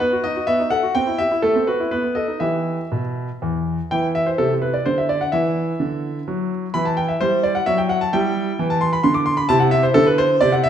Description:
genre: classical-period piano sonatina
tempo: 117-133 BPM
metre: 3/4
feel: rubato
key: E minor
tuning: A4 = 440 Hz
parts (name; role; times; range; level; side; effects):
- clear grand piano; solo; 0.0-10.7 s; E2 to D6; -17 LUFS; equal; none
room: wet recital hall reverb, RT60 1.6 s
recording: none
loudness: -17 LUFS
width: side -9 dB against mid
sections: 0.0-3.9 A section; 3.9-10.7 B section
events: none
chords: 0.5 B7; 0.9 C; 1.4 F#m7b5/A; 1.9 B7; 2.4 Em; 3.9 Cadd9; 5.3 Dadd9; 6.7 Em; 9.5 Cadd9(#11)

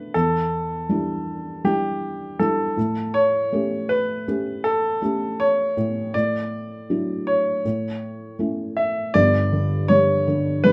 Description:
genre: pop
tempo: 80 BPM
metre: 4/4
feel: straight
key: unclear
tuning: A4 = 443 Hz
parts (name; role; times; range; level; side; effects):
- bright concert grand piano; melody; 0.0-10.7 s; G4 to E5; -24 LUFS; equal; none
- felt-muted upright piano; accompaniment; 0.0-10.7 s; G1 to G4; -26 LUFS; equal; none
room: wet studio reverb, RT60 0.5 s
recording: rough home demo mix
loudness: -22 LUFS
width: mono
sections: 0.0-9.1 A section; 9.1-10.7 B section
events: none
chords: 0.1 Em7; 2.8 A7; 6.1 Dadd9/A; 7.6 A; 9.1 G5

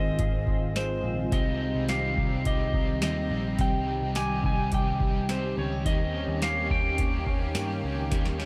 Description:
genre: dream pop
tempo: 106 BPM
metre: 4/4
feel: straight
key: unclear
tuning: A4 = 440 Hz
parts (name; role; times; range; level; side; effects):
- clean lap steel guitar; melody; 0.0-8.5 s; C5 to Ab5; -34 LUFS; equal; tape echo
- shimmering ambient pad; sustained chords; 0.0-8.5 s; Eb3 to G4; -35 LUFS; equal; chorus, built-in reverb
- clean electric guitar; arpeggios; 0.0-8.5 s; Ab2 to Ab4; -37 LUFS; equal; lush chorus, tape echo
- vintage muted picked electric bass; bass; 0.0-8.5 s; Ab1 to G2; -34 LUFS; equal; none
- booming analog drum machine; drums; 0.2-8.5 s; hi-hat, kick drum, snare drum, tambourine; -31 LUFS; equal; overdrive
- cranked stack guitar; accompaniment; 1.3-8.5 s; C3 to G4; -42 LUFS; equal; overdrive, tremolo, analog chorus
room: moderate huge ambient reverb, RT60 8.7 s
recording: dreamy mix soaked in reverb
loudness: -27 LUFS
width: mono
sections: 0.0-8.5 A section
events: drum fill 8.1-8.5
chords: 0.0 Fm7; 1.3 Cm; 5.9 Eb7

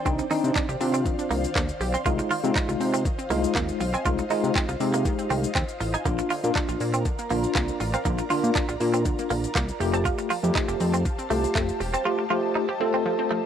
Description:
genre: dance-pop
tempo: 120 BPM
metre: 4/4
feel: straight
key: unclear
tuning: A4 = 444 Hz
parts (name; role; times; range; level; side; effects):
- ethereal airy pad; sustained chords; 0.0-13.5 s; Eb3 to Bb5; -33 LUFS; left 1 dB; ensemble chorus, built-in reverb, sidechain pumping
- wide unison pluck; arpeggios; 0.0-13.4 s; D3 to C6; -36 LUFS; right 1 dB; sidechain pumping, analog delay
- direct-recorded clean electric guitar; riff; 0.0-13.4 s; A3 to F4; -28 LUFS; right 3 dB; lush chorus
- tine electric piano; accompaniment; 0.1-13.5 s; Ab3 to A4; -27 LUFS; left 1 dB; medium stereo tremolo, sidechain pumping
- fat analog bass; bass; 0.1-12.0 s; E1 to C3; -27 LUFS; equal; sidechain pumping
- smooth R&B drum kit; drums; 0.1-12.0 s; handclaps, hi-hat, kick drum, shaker; -29 LUFS; equal; none
room: little or no reverb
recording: dry, gritty hardware recording, cassette tape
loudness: -22 LUFS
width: side -9 dB against mid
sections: 0.0-13.5 A section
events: none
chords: 0.0 Cmadd9; 2.1 Fm7; 6.1 Bb; 9.8 Fadd9

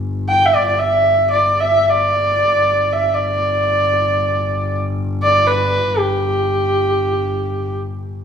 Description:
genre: mongolian traditional, Mongolian folk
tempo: free time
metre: none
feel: none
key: G gong mode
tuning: A4 = 440 Hz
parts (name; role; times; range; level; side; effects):
- warm double bass; drone; 0.0-8.2 s; G1; -23 LUFS; left 2 dB; none
- rich horsehead fiddle; melody; 0.3-7.8 s; G4 to G5; -15 LUFS; right 1 dB; none
room: wet recital hall reverb, RT60 1.5 s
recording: none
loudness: -14 LUFS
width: side -7 dB against mid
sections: 0.0-8.2 A section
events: none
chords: none

